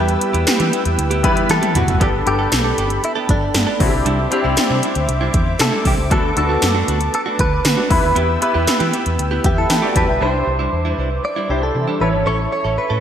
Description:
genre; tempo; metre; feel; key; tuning
1980s-style pop; 117 BPM; 4/4; straight; unclear; A4 = 440 Hz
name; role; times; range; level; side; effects
direct-recorded clean electric guitar; melody; 0.0-13.0 s; D4 to D5; -22 LUFS; right 1 dB; analog chorus
clear baby grand piano; accompaniment; 0.0-13.0 s; G3 to A5; -21 LUFS; left 2 dB; ensemble chorus
warm analog pad; sustained chords; 0.0-13.0 s; A4 to E6; -27 LUFS; equal; chorus
direct-recorded clean electric guitar; riff; 0.0-13.0 s; G3 to A4; -26 LUFS; right 6 dB; wide subtle chorus, digital delay
mellow synth brass; stabs; 0.0-2.0, 9.6-12.2 s; E3 to B4; -26 LUFS; equal; chorus, phaser
vintage muted fingered electric bass; bass; 0.0-13.0 s; F#1 to E3; -21 LUFS; equal; none
80s electronic pad drums; drums; 0.1-10.1 s; hi-hat, kick drum, snare drum, tambourine, toms; -19 LUFS; equal; gated reverb on snare and toms, gated reverb
room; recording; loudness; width
moderate lush hall reverb, RT60 2.4 s; bright 1980s-style digital production; -15 LUFS; side -9 dB against mid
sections
0.0-2.0 A section; 2.0-10.2 B section; 10.2-13.0 C section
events
drum fill 1.5-2.0; band accent 8.2-10.2; grand piano fill 9.2-10.2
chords
0.0 Em; 2.0 Gadd9; 3.8 Cadd9; 6.1 Bm7/D; 7.9 Em; 10.2 Cadd9; 12.0 A

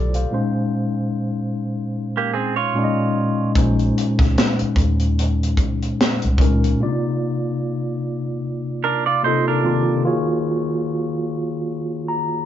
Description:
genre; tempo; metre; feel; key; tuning
R&B, neo-soul; 74 BPM; 4/4; swing 57% on 16ths; unclear; A4 = 440 Hz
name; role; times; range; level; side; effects
mellow tine electric piano; accompaniment; 0.0-12.5 s; Bb2 to Bb5; -20 LUFS; left 1 dB; medium stereo tremolo
vintage muted fingered electric bass; bass; 0.0-6.7 s; Bb1 to Eb2; -20 LUFS; equal; none
tight funk drum kit; drums; 0.1-6.8 s; hi-hat, kick drum, snare drum; -20 LUFS; equal; none
clean electric guitar; second line; 2.2-3.5, 8.8-10.0 s; Bb3 to D5; -20 LUFS; right 6 dB; none
room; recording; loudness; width
wet small room reverb, RT60 0.5 s; band playing live in one room, nothing above 7.5 kHz; -18 LUFS; side -11 dB against mid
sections
0.0-3.6 A section; 3.6-6.8 B section; 6.8-12.5 C section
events
silent gap 0.3-3.6; tine electric piano fill 11.7-12.5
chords
0.3 Bbm11; 6.8 Cm11; 10.0 Ebm11

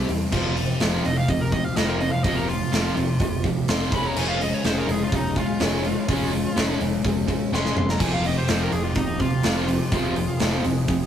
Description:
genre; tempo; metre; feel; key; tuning
hard rock; 125 BPM; 4/4; straight; F minor; A4 = 439 Hz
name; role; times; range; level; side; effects
smooth overdriven lead guitar; melody; 0.0-10.6 s; Eb4 to C6; -29 LUFS; right 1 dB; none
overdriven electric guitar; riff; 0.0-11.1 s; F2 to Db4; -27 LUFS; left 2 dB; none
fingered electric bass; bass; 0.1-11.1 s; F1 to E2; -29 LUFS; right 1 dB; none
big rock drum kit; drums; 0.1-11.0 s; crash cymbal, hi-hat, kick drum, snare drum, toms; -25 LUFS; equal; none
musette accordion; sustained chords; 0.3-11.1 s; Db3 to Ab4; -37 LUFS; right 1 dB; none
tight distorted guitar; riff; 0.3-11.1 s; F2 to Db4; -28 LUFS; right 1 dB; distortion
room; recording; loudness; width
moderate small room reverb, RT60 0.6 s; rough rehearsal-room recording, tube saturation; -20 LUFS; side -9 dB against mid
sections
0.0-11.1 A section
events
lead electric guitar solo 0.0-11.1; drum fill 7.5-8.0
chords
0.3 Fsus2; 3.9 Db/F; 8.0 Fmadd9

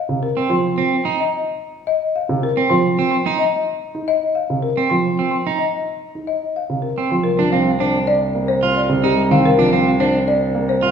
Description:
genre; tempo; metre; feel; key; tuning
classical, minimalist pattern music; 109 BPM; 4/4; straight; C minor; A4 = 444 Hz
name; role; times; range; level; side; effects
folk marimba with medium hard mallets; melody; 0.0-10.9 s; G4 to C6; -20 LUFS; left 4 dB; none
warm grand piano; accompaniment; 0.1-10.7 s; C3 to Eb4; -21 LUFS; right 2 dB; none
electric guitar at the edge of break-up; arpeggios; 0.4-10.9 s; C4 to F4; -20 LUFS; right 4 dB; none
warm cello; bass; 7.3-10.9 s; C2; -20 LUFS; right 1 dB; none
room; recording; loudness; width
wet recital hall reverb, RT60 1.6 s; heard from further back in the room, studio reverb; -16 LUFS; side -7 dB against mid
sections
0.0-7.3 A section; 7.3-10.9 B section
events
none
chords
0.0 Ebsus2/C; 7.3 Csus4

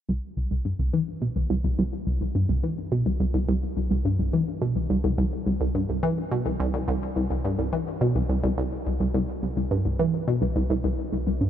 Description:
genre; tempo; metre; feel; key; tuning
ambient; 106 BPM; 4/4; straight; C major; A4 = 440 Hz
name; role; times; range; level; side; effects
resonant blip pluck; solo; 0.1-11.5 s; C2 to E3; -23 LUFS; equal; chorus, ping-pong delay
room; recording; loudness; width
moderate huge ambient reverb, RT60 7.8 s; none; -23 LUFS; side -10 dB against mid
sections
0.1-9.1 A section; 9.1-11.5 B section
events
none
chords
none

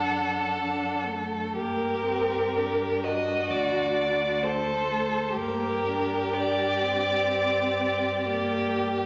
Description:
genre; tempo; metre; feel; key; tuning
classical, slow romantic movement for string quartet; 62 BPM; 4/4; rubato; G minor; A4 = 438 Hz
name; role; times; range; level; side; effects
warm violin; melody; 0.0-8.7 s; Bb4 to F#5; -29 LUFS; equal; none
warm violin; second line; 0.0-9.1 s; F#4 to A4; -32 LUFS; equal; none
warm viola; accompaniment; 0.0-9.1 s; A3 to D4; -35 LUFS; equal; none
rich cello; bass; 0.0-9.1 s; D2 to G2; -40 LUFS; equal; none
room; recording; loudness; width
wet recital hall reverb, RT60 1.6 s; nothing above 7.9 kHz; -27 LUFS; mono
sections
0.0-9.1 A section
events
none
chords
0.0 D/F#; 1.6 Gm; 3.5 D; 5.4 Gm

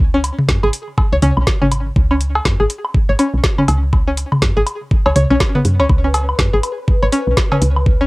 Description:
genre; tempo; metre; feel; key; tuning
minimal techno; 122 BPM; 4/4; swing 60% on 16ths; unclear; A4 = 440 Hz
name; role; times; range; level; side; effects
woody FM bass; bass; 0.0-8.1 s; G#1 to F#2; -17 LUFS; equal; sidechain pumping
string-like resonator pluck; riff; 0.1-8.0 s; B3 to C#5; -18 LUFS; equal; chorus, sidechain pumping, cassette tape, tape echo
garage drum kit; drums; 0.2-7.7 s; hi-hat, snare drum; -20 LUFS; equal; cassette tape
electronic woodblock, toms and cowbell; percussion; 0.2-7.8 s; none; -20 LUFS; equal; cassette tape, tape echo
electronic kick drum; drums; 0.5-8.0 s; none; -15 LUFS; equal; cassette tape
pulsing gated texture; texture; 5.9-8.1 s; B4; -25 LUFS; left 2 dB; chorus, built-in reverb, sidechain pumping, cassette tape
room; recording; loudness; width
little or no reverb; home recording on cassette; -13 LUFS; side -22 dB against mid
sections
0.0-8.1 A section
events
none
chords
0.0 C#7(no3)

